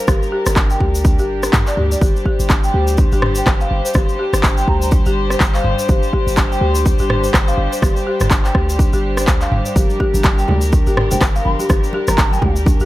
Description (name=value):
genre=afro house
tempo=124 BPM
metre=4/4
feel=swing 59% on 16ths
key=G minor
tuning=A4 = 438 Hz
part: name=warm studio string section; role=sustained chords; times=0.0-12.9 s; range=G3 to C5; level=-24 LUFS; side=left 2 dB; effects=sidechain pumping
part: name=folk marimba with medium mallets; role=arpeggios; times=0.0-12.9 s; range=D4 to G5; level=-22 LUFS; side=left 1 dB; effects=sidechain pumping, tape echo
part: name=warm 808-style bass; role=bass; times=0.1-12.9 s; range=G1 to G2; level=-19 LUFS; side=equal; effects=sidechain pumping
part: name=electronic kick drum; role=drums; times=0.1-12.8 s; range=none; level=-15 LUFS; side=equal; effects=overdrive
part: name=house drum kit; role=drums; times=0.1-12.3 s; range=handclaps, rim click, toms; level=-20 LUFS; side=equal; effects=overdrive
part: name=egg shaker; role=percussion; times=0.1-12.9 s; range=none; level=-30 LUFS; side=left 2 dB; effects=none
part: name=mellow hollow silver concert flute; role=melody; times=3.4-4.9, 11.1-12.6 s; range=G5 to C6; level=-26 LUFS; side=equal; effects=tape echo
part: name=congas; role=percussion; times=9.8-12.8 s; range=none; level=-25 LUFS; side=right 2 dB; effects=none
room=studio ambience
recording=none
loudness=-13 LUFS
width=side -16 dB against mid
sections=0.0-12.9 A section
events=none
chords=0.0 Gm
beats=| 0.08 0.56 1.05 1.53 | 2.02 2.50 2.98 3.47 | 3.95 4.44 4.92 5.40 | 5.89 6.37 6.86 7.34 | 7.82 8.31 8.79 9.28 | 9.76 10.24 10.73 11.21 | 11.69 12.18 12.66